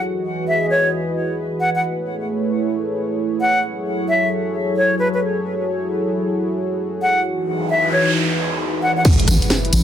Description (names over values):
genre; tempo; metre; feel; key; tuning
UK garage, two-step garage; 133 BPM; 4/4; swing 65% on 16ths; F# dorian; A4 = 440 Hz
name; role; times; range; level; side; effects
warm analog pad; sustained chords; 0.0-9.8 s; E3 to D#5; -21 LUFS; equal; chorus, sidechain pumping
breathy silver concert flute; melody; 0.5-9.0 s; B4 to F#5; -20 LUFS; equal; digital delay
noise sweep and impact; sound effects; 7.5-9.8 s; none; -22 LUFS; equal; none
tambourine; percussion; 9.0-9.8 s; none; -26 LUFS; right 2 dB; none
electronic kick drum; drums; 9.1-9.2 s; none; -12 LUFS; equal; none
garage drum kit; drums; 9.1-9.8 s; crash cymbal, hi-hat, rim click, snare drum; -21 LUFS; right 1 dB; low-pass filter on cymbals, low-pass filter on hats, low-pass filter on snare
deep soft wobble bass; bass; 9.3-9.8 s; A1; -14 LUFS; equal; chorus, tube saturation
room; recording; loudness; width
moderate plate reverb, RT60 1.2 s, digital ambience; none; -17 LUFS; side -10 dB against mid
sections
0.0-9.1 A section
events
noise sweep 7.5-9.1; impact 9.1-9.8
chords
0.0 Emaj9; 1.8 Amaj9; 3.6 F#m9; 7.2 Emaj9; 9.1 Amaj9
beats
| 0.03 0.48 0.93 1.38 | 1.83 2.29 2.74 3.19 | 3.64 4.09 4.54 4.99 | 5.44 5.89 6.34 6.80 | 7.25 7.70 8.15 8.60 | 9.05 9.50